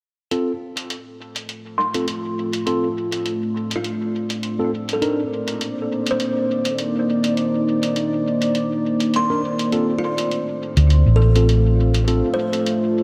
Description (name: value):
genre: ambient dub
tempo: 102 BPM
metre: 4/4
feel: swing 55% on 16ths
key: unclear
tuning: A4 = 440 Hz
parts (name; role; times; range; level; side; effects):
- deep dark ambient pad; sustained chords; 1.6-13.0 s; A3 to D5; -24 LUFS; equal; chorus, built-in reverb
- mellow tine electric piano; stabs; 0.3-5.2, 9.3-12.3 s; C4 to Bb4; -28 LUFS; equal; vintage 12-bit sampler grit, low-pass filter, dub echo
- electronic hi-hat; drums; 0.3-12.8 s; none; -32 LUFS; equal; dub echo
- kalimba; arpeggios; 1.8-13.0 s; F4 to C6; -29 LUFS; equal; low-pass filter, analog delay
- hollow-body short-scale fingered electric bass; bass; 10.8-12.2 s; A1 to D2; -16 LUFS; equal; none
room: wet lush hall reverb, RT60 3.0 s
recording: dreamy mix soaked in reverb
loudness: -20 LUFS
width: mono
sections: 0.3-13.0 A section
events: filter sweep on ambient pad 0.3-13.0; filter sweep on kalimba 0.3-13.0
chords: 0.3 Dm7; 5.0 Cm9; 9.7 Dm7